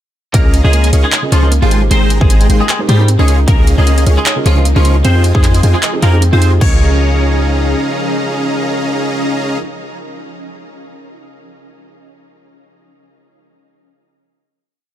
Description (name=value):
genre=future bass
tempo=153 BPM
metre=4/4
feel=swing 55% on 16ths, half-time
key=Db lydian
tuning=A4 = 440 Hz
part: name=twangy electric guitar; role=melody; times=0.3-9.6 s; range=F3 to Db5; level=-20 LUFS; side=equal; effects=ensemble chorus, sidechain pumping, ping-pong delay
part: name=felt-muted upright piano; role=accompaniment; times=0.3-9.6 s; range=Db3 to F5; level=-22 LUFS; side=right 3 dB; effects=sidechain pumping, digital delay
part: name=shimmering ambient pad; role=sustained chords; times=1.1-9.6 s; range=C3 to Bb4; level=-25 LUFS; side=equal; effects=chorus, built-in reverb, phaser, sidechain pumping
part: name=wide unison pluck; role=arpeggios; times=0.3-6.8 s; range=Bb3 to G5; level=-26 LUFS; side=right 2 dB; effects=none
part: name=dense compressed supersaw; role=riff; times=0.3-9.6 s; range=Ab3 to Db6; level=-19 LUFS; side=equal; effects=sidechain pumping, digital delay
part: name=warm 808-style bass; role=bass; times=0.3-7.8 s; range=Ab1 to Ab2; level=-11 LUFS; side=equal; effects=sidechain pumping
part: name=dubstep drum kit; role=drums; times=0.3-6.7 s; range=crash cymbal, handclaps, hi-hat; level=-19 LUFS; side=right 1 dB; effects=none
part: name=electronic kick drum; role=drums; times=0.3-6.7 s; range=none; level=-11 LUFS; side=equal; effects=none
room=little or no reverb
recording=none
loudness=-9 LUFS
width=side -12 dB against mid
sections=0.3-6.6 drop; 6.6-9.8 final chord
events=drop 0.3-6.6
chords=0.3 Abmaj7; 3.3 Db69; 5.0 Fm9; 6.6 Db69